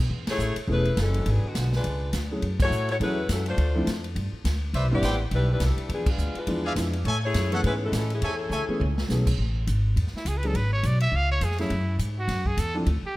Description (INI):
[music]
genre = jazz, big band swing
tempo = 207 BPM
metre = 4/4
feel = swing 59% on 8ths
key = A major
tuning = A4 = 440 Hz
[part]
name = upright bass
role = bass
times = 0.0-13.1 s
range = E1 to A2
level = -25 LUFS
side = equal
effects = none
[part]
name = swinging big-band drum kit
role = drums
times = 0.1-12.9 s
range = crash cymbal, hi-hat, kick drum, ride cymbal, snare drum, toms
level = -32 LUFS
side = equal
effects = none
[part]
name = warm saxophone section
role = melody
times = 0.3-9.1 s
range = D3 to D5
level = -30 LUFS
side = left 2 dB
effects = none
[part]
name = warm baby grand piano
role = accompaniment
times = 0.7-12.9 s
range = E3 to A4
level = -30 LUFS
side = equal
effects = none
[part]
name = clear trumpet section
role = stabs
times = 4.7-8.6 s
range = G#4 to G#5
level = -32 LUFS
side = equal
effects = none
[part]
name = bright trumpet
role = melody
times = 10.2-13.2 s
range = E4 to E#5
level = -29 LUFS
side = right 1 dB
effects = none
[sound]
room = light reverb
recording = rough home demo mix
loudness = -23 LUFS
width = side -18 dB against mid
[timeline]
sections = 0.1-9.4 A section; 9.4-13.2 B section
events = band accent 0.2, 2.6, 6.0; drum fill 8.5-9.1; trumpet solo 9.4-13.2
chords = 0.1 Amaj7; 1.3 G#m7b5; 1.8 C#7b9; 2.4 F#m7; 3.6 Dm7; 4.2 G5; 4.7 Cmaj9; 5.9 E7b9; 7.1 Amaj7; 10.5 G#dim; 11.1 C#; 11.7 F#7(no3)